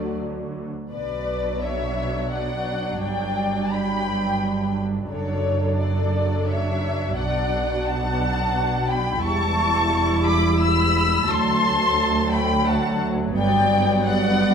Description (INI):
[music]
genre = cinematic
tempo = 87 BPM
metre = 3/4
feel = rubato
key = B minor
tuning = A4 = 445 Hz
[part]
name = muted symphonic violin section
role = melody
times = 0.0-14.5 s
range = C#5 to E6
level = -25 LUFS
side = left 3 dB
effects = none
[part]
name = muted symphonic violin section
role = second line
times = 0.0-14.5 s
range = D4 to B5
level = -27 LUFS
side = left 2 dB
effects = none
[part]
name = muted studio viola section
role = accompaniment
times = 0.0-14.5 s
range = F#3 to E4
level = -27 LUFS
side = right 1 dB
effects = none
[part]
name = mellow French horn section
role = sustained chords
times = 0.0-0.6 s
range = A3 to F#4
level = -33 LUFS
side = left 2 dB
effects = none
[part]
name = muted symphonic cello section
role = bass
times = 0.0-14.5 s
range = D2 to D3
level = -27 LUFS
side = right 2 dB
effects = none
[part]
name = muted symphonic double bass section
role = bass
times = 0.0-14.5 s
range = E1 to D2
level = -27 LUFS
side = right 2 dB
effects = none
[sound]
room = wet recital hall reverb, RT60 1.3 s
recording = minimal, uncompressed stereo recording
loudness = -20 LUFS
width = side -7 dB against mid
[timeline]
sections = 0.9-14.5 A section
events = none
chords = 0.0 D; 0.9 Bm; 3.0 Gmaj7; 5.1 Dmaj7/F#; 7.2 Bm7; 9.2 Em; 11.3 D7; 13.4 Gmaj7